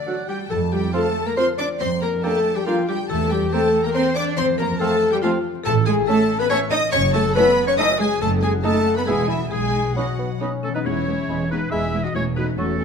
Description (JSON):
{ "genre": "cinematic, playful, whimsical film cue", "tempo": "140 BPM", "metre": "3/4", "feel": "straight", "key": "E major from 5.7 s", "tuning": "A4 = 439 Hz", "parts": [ { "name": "buzzing marimba with medium hard mallets", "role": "melody", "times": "0.0-12.8 s", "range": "C#4 to D#5", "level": "-28 LUFS", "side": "left 6 dB", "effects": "none" }, { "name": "rich studio violin section", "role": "melody", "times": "0.0-12.8 s", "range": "C#4 to D#6", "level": "-32 LUFS", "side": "left 1 dB", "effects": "none" }, { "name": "mellow concert flute", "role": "second line", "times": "0.0-12.7 s", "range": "D5 to C#6", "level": "-37 LUFS", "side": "equal", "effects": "none" }, { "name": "warm studio violin section", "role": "second line", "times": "0.0-12.8 s", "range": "C#4 to D#6", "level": "-31 LUFS", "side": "left 1 dB", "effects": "none" }, { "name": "concert harp", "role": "arpeggios", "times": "0.0-12.8 s", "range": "E2 to B5", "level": "-29 LUFS", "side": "left 10 dB", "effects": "none" }, { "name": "bright clarinet", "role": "second line", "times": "0.1-12.8 s", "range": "E4 to E5", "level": "-29 LUFS", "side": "equal", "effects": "none" }, { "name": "clear oboe", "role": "second line", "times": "0.1-12.8 s", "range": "A4 to G5", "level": "-34 LUFS", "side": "right 3 dB", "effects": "none" }, { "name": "mellow bassoon", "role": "accompaniment", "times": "0.1-12.7 s", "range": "F3 to D#4", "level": "-31 LUFS", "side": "right 4 dB", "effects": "none" }, { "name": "warm studio viola section", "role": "accompaniment", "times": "0.1-12.8 s", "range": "F#3 to F#4", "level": "-30 LUFS", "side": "right 3 dB", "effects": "none" }, { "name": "dark French horn section", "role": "sustained chords", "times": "0.1-12.8 s", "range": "A3 to D#5", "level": "-23 LUFS", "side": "left 2 dB", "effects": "none" }, { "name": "rich studio cello section", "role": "bass", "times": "0.3-12.8 s", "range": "E2 to D#4", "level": "-26 LUFS", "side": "right 4 dB", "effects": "none" }, { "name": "warm studio double bass section", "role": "bass", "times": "0.5-12.8 s", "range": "E1 to F2", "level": "-26 LUFS", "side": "right 6 dB", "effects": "none" } ], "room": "moderate scoring stage reverb, RT60 1.5 s", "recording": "close, detailed microphones", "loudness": "-18 LUFS", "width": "side -6 dB against mid", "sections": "0.5-10.9 A section; 10.9-12.8 B section", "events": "none", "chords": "0.0 D; 0.5 Gm7/F; 3.1 C7/E; 4.4 F; 5.7 A; 6.9 F#m7; 8.2 D#dim/F#; 9.1 E; 9.5 B; 10.9 E; 12.2 F#m7/E", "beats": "0.07 | 0.50 0.94 1.37 | 1.80 2.23 2.67 | 3.10 3.52 3.95 | 4.38 4.80 5.23 | 5.65 6.08 6.50 | 6.93 7.36 7.78 | 8.21 8.64 9.08 | 9.52 9.97 10.41 | 10.86 11.29 11.72 | 12.15 12.58" }